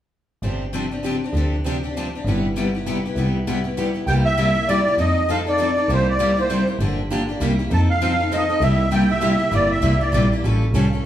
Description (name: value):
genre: acoustic string swing (jazz manouche)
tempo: 198 BPM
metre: 3/4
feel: swing 60% on 8ths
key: C major, C mixolydian from 4.1 s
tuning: A4 = 440 Hz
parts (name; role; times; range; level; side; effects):
- picked plugged-in steel-string acoustic guitar; accompaniment; 0.4-10.9 s; C3 to A4; -27 LUFS; right 2 dB; none
- picked steel-string acoustic guitar; accompaniment; 0.4-11.0 s; C3 to A4; -23 LUFS; left 2 dB; none
- rich double bass; bass; 0.4-11.0 s; G1 to F2; -22 LUFS; equal; none
- musette accordion; melody; 4.1-10.3 s; C5 to A5; -20 LUFS; right 1 dB; none
room: wet large studio reverb, RT60 1.2 s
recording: band playing live in one room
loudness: -18 LUFS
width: side -11 dB against mid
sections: 0.4-4.1 A section; 4.1-11.1 B section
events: none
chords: 0.4 G7sus4; 2.2 Cmaj7/G; 4.1 C7; 5.0 F7; 5.9 C7; 6.8 Gm7; 7.4 C7; 7.7 F7; 8.6 C7; 10.4 A7alt